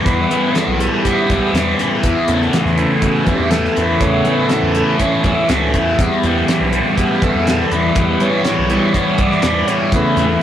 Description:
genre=psychedelic rock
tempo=122 BPM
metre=4/4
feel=straight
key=E dorian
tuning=A4 = 444 Hz
part: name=thick fuzz guitar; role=riff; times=0.0-10.4 s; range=E2 to C#4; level=-15 LUFS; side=left 1 dB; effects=distortion, phaser
part: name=combo organ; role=sustained chords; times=0.1-10.4 s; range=C#3 to D5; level=-20 LUFS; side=right 2 dB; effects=spring reverb
part: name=growling fingered electric bass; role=bass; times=0.1-10.4 s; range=B1 to E3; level=-22 LUFS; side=equal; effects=overdrive
part: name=damped 70s drum kit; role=drums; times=0.1-10.3 s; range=hi-hat, kick drum, snare drum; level=-20 LUFS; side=equal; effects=none
room=wet studio ambience, RT60 0.5 s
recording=rough rehearsal-room recording, warm saturation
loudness=-13 LUFS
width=side -10 dB against mid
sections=0.0-10.4 A section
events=transistor combo organ solo 0.0-10.4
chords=0.0 Em; 2.0 Aadd9/E; 6.0 Em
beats=| 0.06 0.56 1.05 1.55 | 2.04 2.53 3.03 3.52 | 4.02 4.51 5.00 5.50 | 5.99 6.49 6.98 7.47 | 7.96 8.46 8.95 9.44 | 9.93 10.42

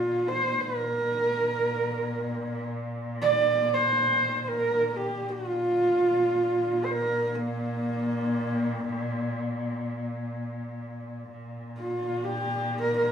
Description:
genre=mongolian traditional, Mongolian folk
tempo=free time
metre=none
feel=none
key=Bb gong mode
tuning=A4 = 445 Hz
part: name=warm horsehead fiddle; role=melody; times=0.0-13.1 s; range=Bb3 to D5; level=-25 LUFS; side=right 2 dB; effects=none
part: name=warm cello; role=drone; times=0.0-13.1 s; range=Bb2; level=-33 LUFS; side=left 1 dB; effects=none
room=wet stone room reverb, RT60 1.1 s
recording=band playing live in one room, small room ambience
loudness=-25 LUFS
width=side -8 dB against mid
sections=0.0-11.3 A section; 11.3-13.1 A section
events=none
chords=none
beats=free time

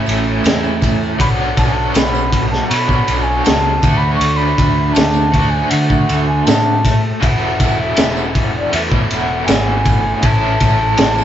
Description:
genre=psychedelic rock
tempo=80 BPM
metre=4/4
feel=straight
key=unclear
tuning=A4 = 440 Hz
part: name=raw garage guitar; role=riff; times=0.0-11.2 s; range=E2 to F#4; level=-18 LUFS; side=equal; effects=overdrive, tremolo
part: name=picked electric bass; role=bass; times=0.1-11.2 s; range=E1 to D3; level=-20 LUFS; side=equal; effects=none
part: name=crunchy breakbeat drum kit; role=drums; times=0.1-11.2 s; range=kick drum, ride cymbal, snare drum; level=-16 LUFS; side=equal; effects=none
part: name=tambourine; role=percussion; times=0.1-11.2 s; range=none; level=-33 LUFS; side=right 6 dB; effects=none
part: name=mellow hollow concert flute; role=melody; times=1.2-11.2 s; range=D5 to C#6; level=-19 LUFS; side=equal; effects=none
room=light reverb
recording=band playing live in one room, nothing above 7.7 kHz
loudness=-12 LUFS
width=side -10 dB against mid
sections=0.0-11.2 A section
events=none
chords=0.0 A; 1.2 Bm; 3.8 D; 7.2 Esus4; 10.2 A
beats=0.43 | 1.19 1.94 2.70 3.45 | 4.20 4.96 5.71 6.46 | 7.22 7.97 8.73 9.48 | 10.24 10.99

